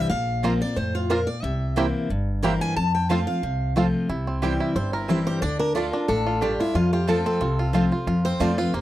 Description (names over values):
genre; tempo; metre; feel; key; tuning
bluegrass; 181 BPM; 4/4; swing 54% on 8ths; F major; A4 = 442 Hz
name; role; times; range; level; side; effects
picked steel-string acoustic guitar; melody; 0.0-8.8 s; E4 to Bb5; -27 LUFS; left 1 dB; slapback echo
picked steel-string acoustic guitar; accompaniment; 0.0-8.8 s; F2 to F4; -25 LUFS; left 2 dB; none
upright bass; bass; 0.0-8.8 s; G1 to F2; -28 LUFS; equal; none
bluegrass banjo; arpeggios; 0.4-8.8 s; Bb3 to Bb4; -28 LUFS; right 4 dB; none
mandolin; stabs; 0.4-8.5 s; A3 to Bb5; -29 LUFS; right 7 dB; none
room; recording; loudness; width
light reverb; dry, close 1970s-style studio recording; -21 LUFS; side -14 dB against mid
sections
0.0-4.1 A section; 4.1-8.8 B section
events
none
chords
0.1 Bbsus2; 1.4 C7; 2.8 F; 4.1 C; 5.4 Dm; 6.7 F